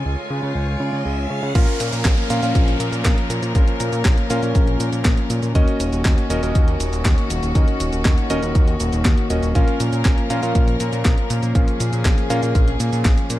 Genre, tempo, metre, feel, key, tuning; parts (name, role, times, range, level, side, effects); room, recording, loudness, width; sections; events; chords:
italo disco; 120 BPM; 4/4; straight; A4 = 440 Hz
rich chamber string section; sustained chords; 0.0-13.4 s; D#3 to G#5; -26 LUFS; left 2 dB; vintage 12-bit sampler grit
fat analog bass; bass; 0.0-13.4 s; D#1 to C#3; -23 LUFS; equal
riser and downlifter; sound effects; 0.0-5.6 s; -32 LUFS; equal
warm electric grand piano; stabs; 1.6-13.4 s; C#4 to E#5; -25 LUFS; equal; digital delay
clean 12-bit digital drum machine; drums; 1.6-13.4 s; cabasa, crash cymbal, handclaps, hi-hat, snare drum; -26 LUFS; equal
electronic kick drum; drums; 1.6-13.2 s; -17 LUFS; equal
little or no reverb; dark, warm production; -16 LUFS; side -15 dB against mid
0.0-1.6 A section; 1.6-13.4 B section
riser 0.0-1.6; filter sweep on string section 0.0-1.6
0.0 C#; 1.6 A#m; 5.6 D#m7; 9.6 A#m